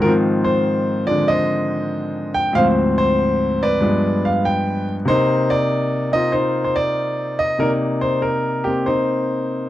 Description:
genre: solo jazz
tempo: 95 BPM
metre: 4/4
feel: swing 68% on 8ths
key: C minor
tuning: A4 = 440 Hz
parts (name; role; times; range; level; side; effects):
- clear concert grand piano; solo; 0.0-9.7 s; D2 to G5; -16 LUFS; equal; none
room: light reverb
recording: dry, close 1970s-style studio recording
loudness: -16 LUFS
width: side -14 dB against mid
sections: 0.0-9.7 A section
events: none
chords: 0.0 Ab6; 2.5 Dm7b5; 3.8 G7b9; 5.1 Cm9

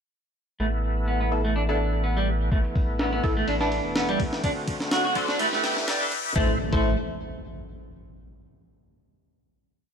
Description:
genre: breakbeat, breaks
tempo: 125 BPM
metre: 4/4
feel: swing 54% on 16ths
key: A dorian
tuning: A4 = 435 Hz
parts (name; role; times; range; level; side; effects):
- overdriven tonewheel organ; sustained chords; 0.6-6.6 s; A2 to C5; -31 LUFS; right 1 dB; chorus vibrato, slow rotary speaker, sidechain pumping, low-pass filter
- clean electric guitar; riff; 0.6-7.0 s; D3 to F#4; -28 LUFS; right 2 dB; vintage 12-bit sampler grit, low-pass filter, digital delay
- saturated sub bass; bass; 0.6-7.0 s; D1 to B1; -27 LUFS; equal; none
- band-passed chord stab; stabs; 1.3-6.9 s; A3 to C5; -31 LUFS; left 3 dB; phaser, digital delay
- breakbeat sampler-style drum kit; drums; 2.5-6.8 s; hi-hat, kick drum, ride cymbal, snare drum; -27 LUFS; equal; low-pass filter on cymbals, small room ambience, low-pass filter on kick, low-pass filter on hats, low-pass filter on snare
- riser and impact; sound effects; 4.3-8.3 s; none; -34 LUFS; left 1 dB; none
room: light reverb, digital ambience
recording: dark, warm production, high-pass filter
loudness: -22 LUFS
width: side -7 dB against mid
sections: 0.6-2.5 intro; 2.5-6.4 build; 6.4-8.3 final chord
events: build-up 2.5-6.4; filter sweep on drum 2.5-6.4; filter sweep on clean electric guitar 2.5-6.4; filter sweep on tonewheel organ 2.5-6.4; filter sweep 2.5-6.4; riser 4.3-6.4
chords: 0.6 Asus2; 4.4 D7; 5.4 Em; 6.4 Am

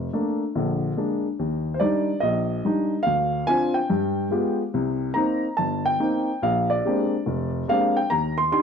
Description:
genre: solo jazz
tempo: 143 BPM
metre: 4/4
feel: swing 66% on 8ths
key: unclear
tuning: A4 = 441 Hz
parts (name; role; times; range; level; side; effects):
- warm baby grand piano; solo; 0.0-8.6 s; F1 to C6; -21 LUFS; equal; none
room: moderate studio reverb, RT60 0.9 s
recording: none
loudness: -21 LUFS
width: side -6 dB against mid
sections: 0.0-1.4 A section; 1.4-8.6 B section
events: none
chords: 0.0 Bbmaj7; 0.5 Bb7; 1.4 Ebmaj7; 3.1 Dm7b5; 3.9 G7b9; 4.7 Cm7; 6.4 Bb13; 8.1 Ebmaj7

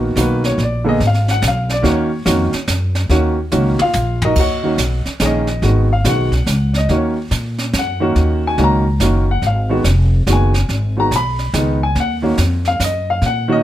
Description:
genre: jazz piano trio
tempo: 142 BPM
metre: 3/4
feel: swing 65% on 8ths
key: Eb minor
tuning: A4 = 440 Hz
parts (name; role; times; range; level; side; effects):
- warm upright piano; melody; 0.0-13.6 s; D3 to Cb6; -17 LUFS; equal; none
- upright bass; bass; 0.0-13.6 s; F1 to Bb2; -17 LUFS; equal; none
- jazz brush drum kit; drums; 0.2-13.6 s; brushed snare drum, crash cymbal, hi-hat, kick drum, snare drum, toms; -22 LUFS; right 2 dB; none
room: little or no reverb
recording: close, detailed microphones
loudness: -14 LUFS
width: side -13 dB against mid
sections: 0.0-4.4 A section; 4.4-13.6 A section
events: upright piano solo 0.0-13.6; drum fill 3.5-4.4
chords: 0.0 Bmaj7; 0.6 Bb7b9; 1.8 Ebm7; 5.6 Abm7; 6.9 Ebm7; 9.4 Abm7; 12.0 Ebm

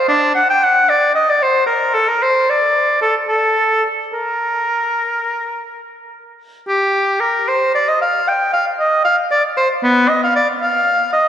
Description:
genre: classical, baroque-style fantasia for unaccompanied oboe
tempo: 69-78 BPM (dotted quarters)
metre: 12/8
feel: rubato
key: unclear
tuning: A4 = 440 Hz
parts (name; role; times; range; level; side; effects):
- bright oboe; solo; 0.0-11.3 s; B3 to G5; -13 LUFS; equal; none
room: wet church reverb, RT60 3.6 s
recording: heard from further back in the room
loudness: -13 LUFS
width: side -10 dB against mid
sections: 0.0-6.7 A section; 6.7-11.3 A section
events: none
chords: none

